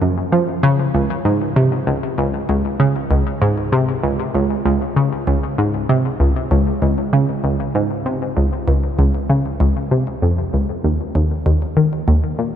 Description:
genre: ambient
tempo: 97 BPM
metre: 4/4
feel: straight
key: unclear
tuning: A4 = 440 Hz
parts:
  - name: analog pluck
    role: solo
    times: 0.0-12.6 s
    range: Db2 to F3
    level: -15 LUFS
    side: equal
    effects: chorus, ping-pong delay
room: wet huge ambient reverb, RT60 7.8 s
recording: none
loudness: -15 LUFS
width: side -9 dB against mid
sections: 0.0-10.8 A section; 10.8-12.6 B section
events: none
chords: none

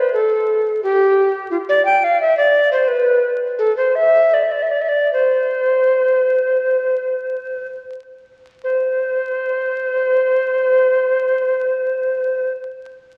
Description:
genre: classical, baroque-style fantasia for unaccompanied recorder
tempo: 64-88 BPM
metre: 4/4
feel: rubato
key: C major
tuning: A4 = 435 Hz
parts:
  - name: mellow tenor recorder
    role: solo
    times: 0.0-12.5 s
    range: F4 to G5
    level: -17 LUFS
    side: equal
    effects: none
room: wet concert hall reverb, RT60 2.4 s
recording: very old 78 rpm record, vinyl crackle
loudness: -17 LUFS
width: mono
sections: 0.0-8.6 A section; 8.6-12.2 B section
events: slowing down 0.8-8.6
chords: none

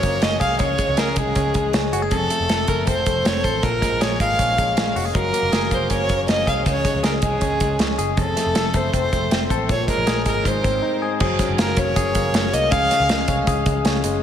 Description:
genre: jangly indie pop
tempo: 158 BPM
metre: 4/4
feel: straight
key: Db major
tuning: A4 = 441 Hz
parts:
  - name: dark violin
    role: melody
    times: 0.0-13.3 s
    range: Ab4 to F5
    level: -22 LUFS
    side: right 1 dB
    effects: analog delay
  - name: direct-recorded clean electric guitar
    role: arpeggios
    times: 0.0-14.2 s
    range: F2 to A4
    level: -24 LUFS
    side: left 4 dB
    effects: analog delay
  - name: vintage muted picked electric bass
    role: bass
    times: 0.0-14.2 s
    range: F1 to Db2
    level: -26 LUFS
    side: equal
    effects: none
  - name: modern studio drum kit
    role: drums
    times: 0.0-14.1 s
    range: crash cymbal, hi-hat, kick drum, snare drum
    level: -22 LUFS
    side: right 1 dB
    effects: none
room: wet huge ambient reverb, RT60 4.5 s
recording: dreamy mix soaked in reverb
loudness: -17 LUFS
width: side -9 dB against mid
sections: 0.0-11.2 A section; 11.2-14.2 B section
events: none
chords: 0.0 Gbadd9; 0.6 Db5; 2.1 F; 3.6 Bbm7; 5.1 Gbadd9; 6.7 Db5; 8.2 F; 9.7 Absus24; 10.5 Ab; 11.2 Gbadd9; 12.7 Db

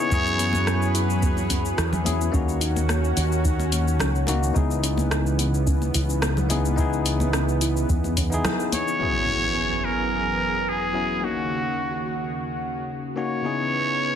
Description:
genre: sunset chillout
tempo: 108 BPM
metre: 4/4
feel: swing 54% on 16ths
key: unclear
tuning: A4 = 440 Hz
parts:
  - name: trumpet with straight mute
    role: melody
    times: 0.0-1.2, 8.7-14.2 s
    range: F#4 to C#5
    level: -26 LUFS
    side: equal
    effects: tape echo
  - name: barky tine electric piano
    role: accompaniment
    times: 0.0-14.2 s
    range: C#3 to G#4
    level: -28 LUFS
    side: moving between left 6 dB and right 5 dB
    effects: auto-pan, low-pass filter, ping-pong delay
  - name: lush unison pad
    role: sustained chords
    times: 0.0-14.2 s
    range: D#2 to B4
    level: -29 LUFS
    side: equal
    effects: chorus, vintage 12-bit sampler grit
  - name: soft round pluck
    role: arpeggios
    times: 0.1-8.9 s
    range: A#3 to E4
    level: -34 LUFS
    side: right 1 dB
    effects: none
  - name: fretless electric bass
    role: bass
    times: 0.1-8.4 s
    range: C#2 to F#2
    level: -24 LUFS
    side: equal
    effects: none
  - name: deep house drum kit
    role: drums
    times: 0.1-14.1 s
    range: cabasa, hi-hat, rim click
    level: -29 LUFS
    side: left 1 dB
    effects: overdrive, low-pass filter on perc, low-pass filter on snare, low-pass filter on hats, low-pass filter on room
  - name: electronic kick drum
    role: drums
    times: 0.1-8.3 s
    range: none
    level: -25 LUFS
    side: equal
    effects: none
  - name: congas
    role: percussion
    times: 0.5-8.8 s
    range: none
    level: -32 LUFS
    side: left 2 dB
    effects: none
  - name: impact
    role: sound effects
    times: 9.0-11.2 s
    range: none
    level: -32 LUFS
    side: equal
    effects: none
room: light reverb, digital ambience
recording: dense, heavily limited modern master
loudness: -21 LUFS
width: side -9 dB against mid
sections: 0.0-9.0 A section; 9.0-14.2 B section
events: band accent 8.4; impact 9.0-11.2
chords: 0.1 F#9sus4; 2.3 D#m7; 4.6 C#m7; 9.0 F#9sus4; 11.2 D#m7; 13.4 C#m7

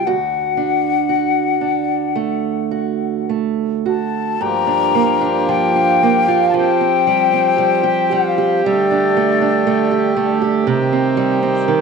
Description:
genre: celtic folk, Celtic slow air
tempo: 51-60 BPM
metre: 4/4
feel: rubato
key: G minor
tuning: A4 = 442 Hz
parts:
  - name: mellow wooden flute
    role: melody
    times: 0.0-10.7 s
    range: D5 to Bb5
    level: -18 LUFS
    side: left 11 dB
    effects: none
  - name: fingerpicked steel-string acoustic guitar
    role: accompaniment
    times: 0.0-11.8 s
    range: D2 to G4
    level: -17 LUFS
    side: right 9 dB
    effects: none
  - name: pedal harmonium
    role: sustained chords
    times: 4.4-11.8 s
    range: D3 to G4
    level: -19 LUFS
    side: left 1 dB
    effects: none
room: light reverb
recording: 1960s-style stereo with parts hard left and right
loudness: -14 LUFS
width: side -5 dB against mid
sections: 0.0-4.4 A section; 4.4-11.8 B section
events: none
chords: 0.1 D; 4.4 Gm7; 6.6 Fsus2; 8.6 Gsus2; 10.7 Cm

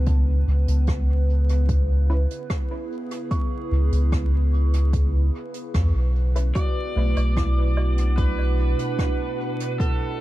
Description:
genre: ambient dub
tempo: 74 BPM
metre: 4/4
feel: straight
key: B dorian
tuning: A4 = 444 Hz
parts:
  - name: warbly tape-like pad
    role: sustained chords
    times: 0.0-10.2 s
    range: B2 to F#5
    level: -31 LUFS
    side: equal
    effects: chorus, built-in reverb, phaser
  - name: kalimba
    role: arpeggios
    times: 0.0-10.2 s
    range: G#3 to C#6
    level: -35 LUFS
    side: right 5 dB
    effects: dub echo
  - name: soft dub sub bass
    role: bass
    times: 0.0-8.7 s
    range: B1 to E2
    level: -19 LUFS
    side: equal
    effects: none
  - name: electronic kick drum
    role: drums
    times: 0.1-10.0 s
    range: none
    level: -24 LUFS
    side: equal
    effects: overdrive
  - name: jazz brush drum kit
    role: drums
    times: 0.1-10.0 s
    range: hi-hat, rim click, woodblock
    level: -39 LUFS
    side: right 1 dB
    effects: dub echo
  - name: filtered dub chord stab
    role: stabs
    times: 2.1-6.5 s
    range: C#4 to B4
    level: -39 LUFS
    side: left 1 dB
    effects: chorus, cassette tape, dub echo
  - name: overdriven slide guitar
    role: melody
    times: 6.6-10.2 s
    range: A4 to D5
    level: -30 LUFS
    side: right 3 dB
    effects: dub echo
room: small room ambience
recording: dark, warm production, vinyl crackle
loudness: -20 LUFS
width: side -16 dB against mid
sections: 0.0-6.6 A section; 6.6-10.2 B section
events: band accent 5.7-6.2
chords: 0.1 C#m7; 6.6 Bm7

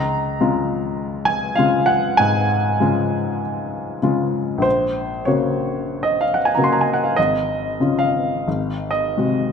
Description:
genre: classical, romantic nocturne for solo piano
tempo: 42-52 BPM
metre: 4/4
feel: rubato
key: Db major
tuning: A4 = 440 Hz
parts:
  - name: warm baby grand piano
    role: solo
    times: 0.0-9.5 s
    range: Ab1 to C6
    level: -17 LUFS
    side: left 1 dB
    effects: none
room: moderate recital hall reverb, RT60 1.6 s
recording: none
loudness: -17 LUFS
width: side -6 dB against mid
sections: 0.0-9.5 A section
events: none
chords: 0.0 Db; 4.6 Gb/Bb; 7.2 Db/Ab; 8.5 Ab7

